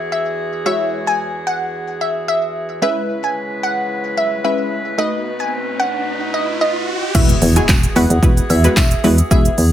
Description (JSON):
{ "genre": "dance-pop", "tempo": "111 BPM", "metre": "4/4", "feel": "straight", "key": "unclear", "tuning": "A4 = 439 Hz", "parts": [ { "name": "punchy chord stab", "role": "accompaniment", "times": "0.0-9.5 s", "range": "G#3 to C#5", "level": "-20 LUFS", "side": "left 1 dB", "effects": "chorus, sidechain pumping" }, { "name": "clear woodwind section", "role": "sustained chords", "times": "0.0-9.7 s", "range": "E2 to B4", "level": "-25 LUFS", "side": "equal", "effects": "sidechain pumping" }, { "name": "glassy wavetable pluck", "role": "melody", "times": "0.1-9.5 s", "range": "D#5 to G#5", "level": "-20 LUFS", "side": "equal", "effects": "chorus, sidechain pumping, digital delay" }, { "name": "riser and impact", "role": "sound effects", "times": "4.8-9.3 s", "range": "none", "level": "-24 LUFS", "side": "equal", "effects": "none" }, { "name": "solid FM bass", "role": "bass", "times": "7.1-9.7 s", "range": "E1 to E2", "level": "-14 LUFS", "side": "equal", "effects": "sidechain pumping" }, { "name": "deep house drum kit", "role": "drums", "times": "7.1-9.7 s", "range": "crash cymbal, handclaps, hi-hat, kick drum, shaker, snare drum", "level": "-15 LUFS", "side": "equal", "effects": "none" }, { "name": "tambourine", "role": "percussion", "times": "7.7-8.9 s", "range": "none", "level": "-28 LUFS", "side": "right 11 dB", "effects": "none" } ], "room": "light reverb", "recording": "none", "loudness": "-15 LUFS", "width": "side -11 dB against mid", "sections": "0.0-7.1 A section; 7.1-9.7 B section", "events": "riser 4.8-7.1; drop 7.1-9.7; impact 7.1-9.3", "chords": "0.0 Eadd9; 2.8 C#m7; 5.0 B7; 7.1 Eadd9" }